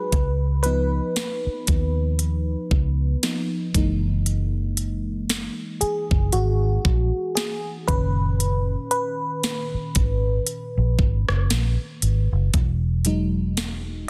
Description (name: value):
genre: contemporary R&B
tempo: 58 BPM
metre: 4/4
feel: swing 58% on 16ths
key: B major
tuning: A4 = 439 Hz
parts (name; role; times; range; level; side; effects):
- mellow FM electric piano; accompaniment; 0.0-14.1 s; A#2 to B4; -29 LUFS; equal; chorus, phaser
- vintage muted fingered electric bass; bass; 0.1-14.1 s; E1 to D#2; -24 LUFS; equal; none
- trap drum kit; drums; 0.1-13.9 s; hi-hat, kick drum, rim click, snare drum; -26 LUFS; equal; overdrive
room: light reverb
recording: dense, heavily limited modern master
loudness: -23 LUFS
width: mono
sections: 0.0-14.1 A section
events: FM electric piano solo 0.0-14.1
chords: 0.1 C#9; 3.7 F#13; 7.9 Bmaj7/F#; 12.5 Emaj9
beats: | 0.12 1.16 2.19 3.23 | 4.26 5.30 6.33 7.37 | 8.40 9.44 10.47 11.50 | 12.54 13.57